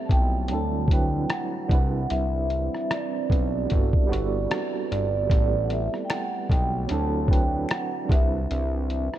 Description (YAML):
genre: lo-fi hip hop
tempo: 75 BPM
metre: 4/4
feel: swing 57% on 16ths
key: unclear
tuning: A4 = 441 Hz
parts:
  - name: vibraphone with soft mallets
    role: melody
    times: 0.0-9.2 s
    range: D5 to A5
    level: -30 LUFS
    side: right 2 dB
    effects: low-pass filter, tape echo
  - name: tine electric piano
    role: accompaniment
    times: 0.0-9.2 s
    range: F#3 to C5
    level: -31 LUFS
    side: right 5 dB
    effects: medium tremolo, cassette tape, low-pass filter
  - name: deep dark ambient pad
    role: sustained chords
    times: 0.0-9.2 s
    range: G3 to B4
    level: -35 LUFS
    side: equal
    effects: chorus, built-in reverb, low-pass filter
  - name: fat analog bass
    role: bass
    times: 0.1-9.1 s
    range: G1 to D2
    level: -27 LUFS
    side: equal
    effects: none
  - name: lo-fi sampler-style drum kit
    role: drums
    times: 0.1-9.2 s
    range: hi-hat, kick drum, rim click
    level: -24 LUFS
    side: equal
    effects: vintage 12-bit sampler grit
  - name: finger snap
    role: percussion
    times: 6.1-7.9 s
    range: none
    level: -45 LUFS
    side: left 8 dB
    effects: none
room: light reverb, digital ambience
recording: cassette tape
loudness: -22 LUFS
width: side -12 dB against mid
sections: 0.0-9.2 A section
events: none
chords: 0.5 D9; 1.7 Cmaj9; 3.7 Gmaj9; 5.3 Am9; 6.9 D9; 8.1 Cmaj9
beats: 0.50 1.30 | 2.10 2.90 3.70 4.50 | 5.30 6.10 6.90 7.70 | 8.50